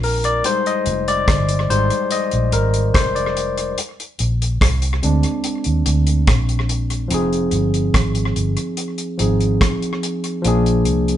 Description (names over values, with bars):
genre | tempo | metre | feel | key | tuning
lovers rock reggae | 72 BPM | 4/4 | straight | F dorian | A4 = 440 Hz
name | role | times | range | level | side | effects
barky tine electric piano | accompaniment | 0.0-11.2 s | F3 to Eb5 | -20 LUFS | left 1 dB | overdrive
vintage muted fingered electric bass | bass | 0.0-11.2 s | F1 to Eb2 | -19 LUFS | equal | none
damped 70s drum kit | drums | 0.0-11.2 s | hi-hat, kick drum, rim click | -21 LUFS | equal | tape echo
room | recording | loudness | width
moderate studio reverb, RT60 0.8 s | band playing live in one room, nothing above 10.7 kHz | -16 LUFS | side -11 dB against mid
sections
0.0-7.1 A section; 7.1-11.2 B section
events
tine electric piano solo 0.0-7.1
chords
0.4 Fm7; 3.8 Bb7; 7.1 Fm7; 10.4 Bb7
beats
| 0.44 1.28 2.11 2.94 | 3.78 4.61 5.44 6.28 | 7.11 7.94 8.78 9.61 | 10.44